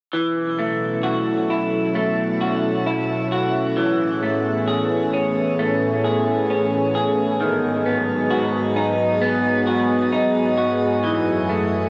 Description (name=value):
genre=dream pop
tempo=66 BPM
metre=4/4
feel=straight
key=unclear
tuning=A4 = 440 Hz
part: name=lush unison pad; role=sustained chords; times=0.1-11.9 s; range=F#2 to A4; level=-24 LUFS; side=equal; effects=chorus
part: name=electric guitar through a small old amp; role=arpeggios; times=0.1-11.9 s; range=D#3 to G#4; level=-23 LUFS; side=equal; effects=subtle chorus, digital delay
room=wet shimmer reverb, RT60 6.3 s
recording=worn, warbling old tape, cassette tape, warbly pitch drift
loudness=-21 LUFS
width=mono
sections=0.1-11.9 A section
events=none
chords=0.1 B7sus4; 3.8 Amaj7; 7.4 G#m7; 11.0 F#m7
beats=| 0.13 1.04 1.95 2.86 | 3.77 4.68 5.59 6.50 | 7.41 8.31 9.22 10.13 | 11.04